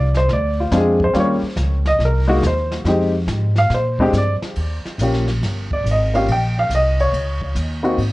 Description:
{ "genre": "jazz piano trio", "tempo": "140 BPM", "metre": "4/4", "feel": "swing 67% on 8ths", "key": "Eb mixolydian", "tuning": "A4 = 440 Hz", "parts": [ { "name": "warm baby grand piano", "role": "melody", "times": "0.0-8.0 s", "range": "G3 to G5", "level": "-19 LUFS", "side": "equal", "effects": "tape echo" }, { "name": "upright bass", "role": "bass", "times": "0.0-8.1 s", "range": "G1 to Bb2", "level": "-19 LUFS", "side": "equal", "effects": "none" }, { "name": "jazz brush drum kit", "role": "drums", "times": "0.1-8.1 s", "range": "brushed snare drum, hi-hat, kick drum, ride cymbal, snare drum", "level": "-30 LUFS", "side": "equal", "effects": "vintage 12-bit sampler grit" } ], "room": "light reverb", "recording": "worn, warbling old tape, cassette tape, warbly pitch drift", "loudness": "-16 LUFS", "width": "side -19 dB against mid", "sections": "0.0-4.6 A section; 4.6-8.1 A section", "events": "grand piano solo 0.0-8.1", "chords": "0.0 Bb7 (rootless); 1.1 Eb7; 2.0 Cm7; 2.9 Fm7; 3.7 Bb69; 4.6 Eb7" }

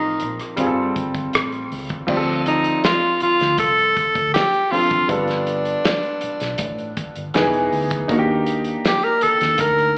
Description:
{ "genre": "lush 1970s-style soul", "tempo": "80 BPM", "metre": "4/4", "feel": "straight", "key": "unclear", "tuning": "A4 = 441 Hz", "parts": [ { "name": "breathy tenor saxophone", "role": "melody", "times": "0.0-10.0 s", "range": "D4 to Bb4", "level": "-20 LUFS", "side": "equal", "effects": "slapback echo" }, { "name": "clear concert grand piano", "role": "accompaniment", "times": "0.0-10.0 s", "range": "E3 to D5", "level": "-25 LUFS", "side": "equal", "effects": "slapback echo" }, { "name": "vintage muted fingered electric bass", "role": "bass", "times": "0.0-9.9 s", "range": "E1 to G2", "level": "-32 LUFS", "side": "equal", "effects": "none" }, { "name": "warm soul drum kit", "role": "drums", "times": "0.2-10.0 s", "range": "crash cymbal, hi-hat, kick drum, rim click, snare drum", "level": "-27 LUFS", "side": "equal", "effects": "none" } ], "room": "light reverb", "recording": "live gig heard through the venue's PA, club reverb, AM radio sound", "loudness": "-20 LUFS", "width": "mono", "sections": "0.0-2.1 A section; 2.1-10.0 B section", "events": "none", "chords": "0.0 F7sus4; 0.6 G9sus4; 2.1 Dm7; 5.1 G9; 7.3 Emaj7; 8.1 Ebmaj7" }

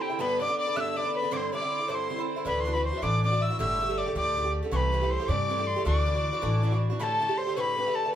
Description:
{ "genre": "celtic folk, Celtic jig", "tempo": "106 BPM (dotted quarters)", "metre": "6/8", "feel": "straight", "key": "D mixolydian", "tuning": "A4 = 440 Hz", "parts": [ { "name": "bright reedy mid whistle", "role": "melody", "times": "0.0-8.1 s", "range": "G5 to F#6", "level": "-30 LUFS", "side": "left 1 dB", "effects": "none" }, { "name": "rich fiddle", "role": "second line", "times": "0.0-8.1 s", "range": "G4 to E5", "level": "-32 LUFS", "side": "left 3 dB", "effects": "none" }, { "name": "Irish bouzouki", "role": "accompaniment", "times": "0.0-8.1 s", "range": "G2 to G4", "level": "-32 LUFS", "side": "right 4 dB", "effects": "none" }, { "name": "upright bass", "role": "bass", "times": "2.5-6.9 s", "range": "G1 to G2", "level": "-28 LUFS", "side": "equal", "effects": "none" } ], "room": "wet studio reverb, RT60 0.5 s", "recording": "heard from further back in the room", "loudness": "-25 LUFS", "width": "side -10 dB against mid", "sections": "0.0-7.0 A section; 7.0-8.2 B section", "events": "none", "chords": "0.2 G; 1.3 Cadd9; 2.5 Dadd9; 3.6 Gsus2; 4.7 C6; 5.9 Dadd9; 7.0 Dsus4" }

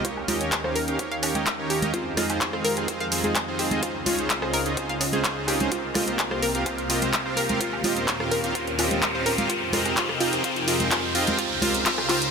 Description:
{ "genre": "progressive house", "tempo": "127 BPM", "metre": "4/4", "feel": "straight", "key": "F minor", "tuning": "A4 = 441 Hz", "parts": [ { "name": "lush unison pad", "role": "sustained chords", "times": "0.0-12.3 s", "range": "C2 to G5", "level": "-31 LUFS", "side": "equal", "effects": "chorus, sidechain pumping" }, { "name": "analog pluck", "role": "arpeggios", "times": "0.0-12.1 s", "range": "F4 to F5", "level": "-30 LUFS", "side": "left 1 dB", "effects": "chorus, sidechain pumping, tape echo" }, { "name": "soft supersaw", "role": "stabs", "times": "0.0-12.2 s", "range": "C4 to F5", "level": "-27 LUFS", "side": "right 2 dB", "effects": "sidechain pumping, tape echo" }, { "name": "big-room dance drum kit", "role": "drums", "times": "0.0-12.3 s", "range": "handclaps, hi-hat, rim click", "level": "-27 LUFS", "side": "left 1 dB", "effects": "sidechain pumping on hats, studio reverb" }, { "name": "electronic kick drum", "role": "drums", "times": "0.0-12.0 s", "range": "none", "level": "-35 LUFS", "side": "equal", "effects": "none" }, { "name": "riser", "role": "sound effects", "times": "3.5-12.3 s", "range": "none", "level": "-32 LUFS", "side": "equal", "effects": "none" }, { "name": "woodblock, cowbell and congas", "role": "percussion", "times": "0.2-12.1 s", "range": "none", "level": "-33 LUFS", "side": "right 1 dB", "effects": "sidechain pumping on perc" } ], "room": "moderate huge ambient reverb, RT60 6.8 s", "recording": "none", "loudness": "-22 LUFS", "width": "side -6 dB against mid", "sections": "0.0-12.3 A section", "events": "build-up 0.0-12.3; riser 3.5-12.3", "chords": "0.0 Eb7; 1.9 Fm7; 3.8 Dbmaj9; 5.7 C7sus4; 7.6 Eb7; 9.5 Fm7; 11.4 Dbmaj9" }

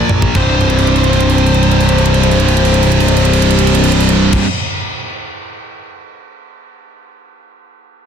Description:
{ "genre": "heavy metal", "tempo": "117 BPM", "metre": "4/4", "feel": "straight", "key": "unclear", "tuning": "A4 = 440 Hz", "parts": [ { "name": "high-gain lead guitar", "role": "melody", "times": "0.0-4.4 s", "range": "C5", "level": "-19 LUFS", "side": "equal", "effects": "distortion" }, { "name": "heavy high-gain guitar", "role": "riff", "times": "0.0-4.5 s", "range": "C2 to Bb3", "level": "-13 LUFS", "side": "left 1 dB", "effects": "distortion" }, { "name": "fuzz picked electric bass", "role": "bass", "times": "0.1-4.4 s", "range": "C1 to Bb1", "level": "-13 LUFS", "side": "equal", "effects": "overdrive" }, { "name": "tight metal drum kit", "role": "drums", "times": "0.1-5.9 s", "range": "crash cymbal, kick drum, ride cymbal, toms", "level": "-19 LUFS", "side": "right 2 dB", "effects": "soft clipping on kick" } ], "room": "little or no reverb", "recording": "dense, heavily limited modern master", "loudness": "-9 LUFS", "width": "side -7 dB against mid", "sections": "0.4-4.5 A section", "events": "drum fill 0.0-0.4, 0.6-4.3", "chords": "0.4 C5" }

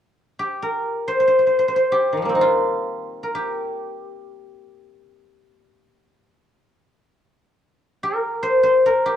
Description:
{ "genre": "chinese traditional, Chinese solo plucked strings", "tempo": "free time", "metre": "none", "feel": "none", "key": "unclear", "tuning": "A4 = 439 Hz", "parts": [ { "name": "guzheng", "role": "solo", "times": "0.4-9.2 s", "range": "Eb3 to C5", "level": "-18 LUFS", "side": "left 1 dB", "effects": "none" } ], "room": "moderate recital hall reverb, RT60 1.6 s", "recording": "worn, warbling old tape, cassette tape, warbly pitch drift", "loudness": "-18 LUFS", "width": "side -10 dB against mid", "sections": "0.0-8.0 A section; 8.0-9.2 B section", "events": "none", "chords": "none" }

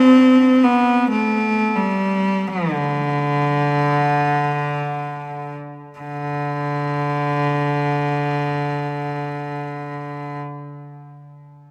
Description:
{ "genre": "caucasian folk", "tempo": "free time", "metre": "none", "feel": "none", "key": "unclear", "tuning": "A4 = 435 Hz", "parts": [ { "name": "bright cello", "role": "melody", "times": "0.0-10.4 s", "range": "D3 to C4", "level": "-20 LUFS", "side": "equal", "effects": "none" } ], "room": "moderate cathedral reverb, RT60 4.5 s", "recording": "none", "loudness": "-20 LUFS", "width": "mono", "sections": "0.0-6.0 A section; 6.0-9.9 B section", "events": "slowing down 0.0-6.0", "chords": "none" }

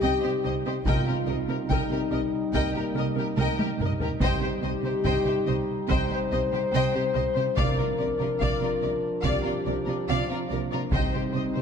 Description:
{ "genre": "cinematic, epic orchestral film score", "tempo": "72 BPM", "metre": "4/4", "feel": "straight", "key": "C minor", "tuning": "A4 = 440 Hz", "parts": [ { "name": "warm symphonic violin section", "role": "melody", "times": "0.0-11.6 s", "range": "Bb4 to G5", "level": "-34 LUFS", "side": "left 4 dB", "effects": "none" }, { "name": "clear symphonic violin section", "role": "second line", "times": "0.0-11.6 s", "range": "F4 to Eb5", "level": "-37 LUFS", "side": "left 4 dB", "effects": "none" }, { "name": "rich symphonic viola section", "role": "accompaniment", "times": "0.0-11.6 s", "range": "Bb4 to Eb5", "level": "-35 LUFS", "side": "left 1 dB", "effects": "none" }, { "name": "warm French horn section", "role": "sustained chords", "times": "0.0-11.6 s", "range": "Bb3 to C5", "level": "-29 LUFS", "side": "left 4 dB", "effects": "none" }, { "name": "warm trombone section", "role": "sustained chords", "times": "0.0-11.6 s", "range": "F3 to Eb4", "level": "-33 LUFS", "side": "right 3 dB", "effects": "none" }, { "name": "dark symphonic cello section", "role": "bass", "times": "0.0-11.6 s", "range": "C3", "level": "-32 LUFS", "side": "right 3 dB", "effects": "none" }, { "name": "warm symphonic double bass section", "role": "bass", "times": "0.0-11.4 s", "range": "C2", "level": "-32 LUFS", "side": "right 4 dB", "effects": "none" }, { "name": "taiko ensemble", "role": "drums", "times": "0.9-11.6 s", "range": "none", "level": "-31 LUFS", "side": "equal", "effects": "none" }, { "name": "timpani", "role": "percussion", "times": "0.9-11.6 s", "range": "C3", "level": "-35 LUFS", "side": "equal", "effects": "none" } ], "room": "wet concert hall reverb, RT60 2.0 s", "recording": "dark, warm production", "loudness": "-24 LUFS", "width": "side -7 dB against mid", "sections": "0.0-11.6 A section", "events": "drum fill 3.4-4.2", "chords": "0.0 Cm; 0.9 Eb/C; 4.2 Cm; 7.6 Bb/C; 10.9 Cm" }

